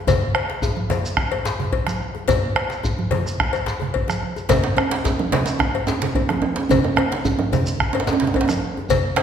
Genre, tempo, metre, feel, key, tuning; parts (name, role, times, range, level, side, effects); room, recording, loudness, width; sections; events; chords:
west african traditional, West African drum ensemble; 109 BPM; 4/4; straight
bombo; percussion; 0.1-9.2 s; -24 LUFS; right 1 dB
congas; percussion; 0.1-9.1 s; -27 LUFS; right 4 dB
cowbell; percussion; 0.1-9.2 s; -25 LUFS; left 7 dB
djembe; percussion; 0.1-9.0 s; -27 LUFS; left 3 dB
shekere; percussion; 0.1-9.0 s; -32 LUFS; right 1 dB
djembe; percussion; 4.5-9.2 s; -22 LUFS; right 5 dB
wet recital hall reverb, RT60 1.6 s; recorded in a church or concert hall; -18 LUFS; side -8 dB against mid
0.0-9.2 A section